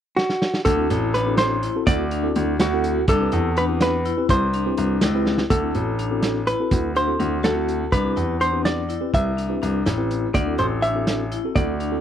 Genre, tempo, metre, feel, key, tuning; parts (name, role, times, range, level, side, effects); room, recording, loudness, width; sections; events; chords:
progressive instrumental, band music in an uneven meter; 248 BPM (eighths); 5/8; straight; D mixolydian; A4 = 445 Hz
hollow-body jazz guitar; melody; 0.2-12.0 s; F#4 to E5; -24 LUFS; right 1 dB
vintage drum kit; drums; 0.2-11.9 s; hi-hat, kick drum, snare drum; -23 LUFS; right 1 dB
vibraphone with medium mallets; arpeggios; 0.7-12.0 s; D4 to F#4; -28 LUFS; left 16 dB
clear grand piano; bass; 0.7-11.9 s; A1 to E2; -24 LUFS; right 1 dB
mellow tine electric piano; accompaniment; 0.8-12.0 s; C4 to B4; -28 LUFS; right 2 dB; medium stereo tremolo
studio ambience; dry, close 1970s-style studio recording; -19 LUFS; side -9 dB against mid
0.7-5.5 A section; 5.5-12.0 B section
drum fill 0.2-0.7, 5.3
0.0 N.C.; 0.7 D7; 3.1 Am9/C; 5.5 D7; 7.9 Am9/C; 10.3 D7